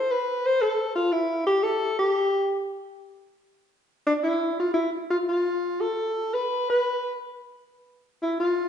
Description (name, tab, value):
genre	jazz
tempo	115 BPM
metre	4/4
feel	swing 69% on 8ths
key	unclear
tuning	A4 = 443 Hz
part	dark alto saxophone	solo	0.0-8.7 s	D4 to C5	-23 LUFS	left 1 dB	none
room	wet recital hall reverb, RT60 1.5 s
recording	recorded in a church or concert hall, nothing above 10.8 kHz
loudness	-23 LUFS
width	side -8 dB against mid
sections	0.0-4.2 A section; 4.2-8.7 B section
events	alto saxophone solo 0.0-4.2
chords	none